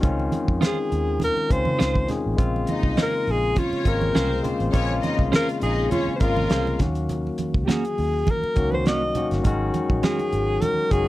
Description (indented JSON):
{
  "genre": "lush 1970s-style soul",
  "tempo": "102 BPM",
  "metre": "4/4",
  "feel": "swing 54% on 16ths",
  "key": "unclear",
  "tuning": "A4 = 437 Hz",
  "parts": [
    { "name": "barky tine electric piano", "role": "accompaniment", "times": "0.0-11.1 s", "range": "Db3 to Ab4", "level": "-26 LUFS", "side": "left 3 dB", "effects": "none" },
    { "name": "vintage muted fingered electric bass", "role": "bass", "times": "0.0-11.1 s", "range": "Gb1 to Db3", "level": "-26 LUFS", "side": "equal", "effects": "none" },
    { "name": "cloth-damped thuddy drum kit", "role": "drums", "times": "0.0-11.1 s", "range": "hi-hat, kick drum, snare drum", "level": "-23 LUFS", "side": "equal", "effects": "none" },
    { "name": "congas", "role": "percussion", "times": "0.0-10.8 s", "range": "none", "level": "-31 LUFS", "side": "right 4 dB", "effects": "none" },
    { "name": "clean electric guitar", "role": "riff", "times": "0.6-10.2 s", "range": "Ab3 to C5", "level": "-27 LUFS", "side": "right 5 dB", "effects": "none" },
    { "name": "breathy alto saxophone", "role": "melody", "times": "0.7-11.1 s", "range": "F4 to Eb5", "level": "-24 LUFS", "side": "left 1 dB", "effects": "none" },
    { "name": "warm studio string section", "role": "second line", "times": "2.7-6.8 s", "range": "C4 to F5", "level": "-30 LUFS", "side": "left 2 dB", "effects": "none" }
  ],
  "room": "small room ambience",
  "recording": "dry, close 1970s-style studio recording",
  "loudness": "-20 LUFS",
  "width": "side -16 dB against mid",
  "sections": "0.0-11.1 A section",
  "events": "none",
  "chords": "0.0 Dbmaj9; 2.4 Bbm9; 6.8 Ebm7; 9.4 Ab7sus4"
}